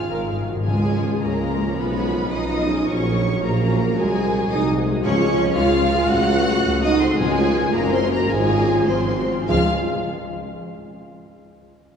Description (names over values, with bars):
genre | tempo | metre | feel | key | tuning
classical, dramatic, fast romantic movement for symphony orchestra | 96-115 BPM (dotted quarters) | 6/8 | rubato | Db major | A4 = 438 Hz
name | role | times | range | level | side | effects
rich symphonic violin section | melody | 0.0-9.7 s | Ab5 to Gb6 | -30 LUFS | left 2 dB | none
bright clarinet | second line | 0.0-0.5 s | F4 | -35 LUFS | right 2 dB | none
dark symphonic violin section | second line | 0.0-9.7 s | Ab4 to Gb5 | -26 LUFS | left 1 dB | none
bright trombone section | sustained chords | 0.0-0.5 s | Eb3 to Ab3 | -37 LUFS | right 2 dB | none
dark French horn section | sustained chords | 0.0-9.6 s | F3 to Ab4 | -26 LUFS | left 2 dB | none
timpani | percussion | 0.0-1.2, 5.1-9.7 s | Ab2 to Db3 | -29 LUFS | left 1 dB | none
warm symphonic viola section | accompaniment | 0.1-9.7 s | F3 to Bb4 | -28 LUFS | right 1 dB | none
rich studio cello section | bass | 0.1-9.7 s | Ab2 to Gb4 | -25 LUFS | right 2 dB | none
rich symphonic double bass section | bass | 0.1-9.7 s | Gb1 to Db2 | -25 LUFS | right 1 dB | none
mellow tuba | bass | 0.7-9.6 s | Gb1 to Db2 | -25 LUFS | right 1 dB | none
room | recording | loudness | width
wet church reverb, RT60 3.4 s | small room reverb | -17 LUFS | side -7 dB against mid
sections
0.7-9.5 A section; 9.5-10.6 B section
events
timpani fill 0.1-0.7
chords
0.1 Ab; 0.7 Db; 1.8 Db7/Cb; 2.9 Gb/Bb; 4.0 Ab7/C; 5.0 Db; 6.1 Gbm/Db; 7.2 Db; 7.7 Gb; 8.3 Db/Ab; 8.9 Ab6; 9.5 Db